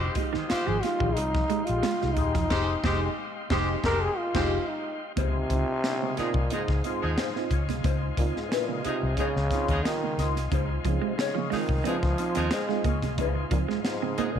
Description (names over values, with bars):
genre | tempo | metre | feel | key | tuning
funk | 90 BPM | 4/4 | straight | unclear | A4 = 440 Hz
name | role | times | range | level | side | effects
clear horn section | second line | 0.0-14.3 s | Eb3 to C5 | -34 LUFS | equal | none
mellow electric guitar | accompaniment | 0.0-14.4 s | Ab3 to Db5 | -35 LUFS | left 10 dB | wah
tonewheel organ | sustained chords | 0.0-14.4 s | Eb5 to C6 | -39 LUFS | left 1 dB | fast rotary speaker
dark upright piano | stabs | 0.0-14.3 s | Db3 to G4 | -34 LUFS | right 10 dB | none
vintage muted fingered electric bass | bass | 0.0-14.4 s | Eb1 to Eb2 | -28 LUFS | left 1 dB | none
clean electric guitar | riff | 0.2-2.4, 10.7-14.3 s | Eb3 to C4 | -33 LUFS | right 10 dB | wide subtle chorus
crisp fusion drum kit | drums | 0.2-14.3 s | crash cymbal, hi-hat, kick drum, snare drum | -31 LUFS | left 1 dB | none
growling trombone | melody | 0.5-14.4 s | Ab2 to Bb4 | -30 LUFS | equal | none
room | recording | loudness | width
moderate echo chamber reverb, RT60 1.8 s, small room ambience | 1960s-style stereo with parts hard left and right | -24 LUFS | side -8 dB against mid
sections
0.0-5.2 A section; 5.2-14.4 B section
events
trombone solo 0.0-5.2; band accent 2.5-5.2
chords
0.0 Fm9; 5.2 Dbmaj9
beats
0.50 1.16 1.83 | 2.50 3.17 3.83 4.50 | 5.17 5.84 6.51 7.17 | 7.84 8.51 9.18 9.85 | 10.51 11.18 11.85 12.52 | 13.18 13.85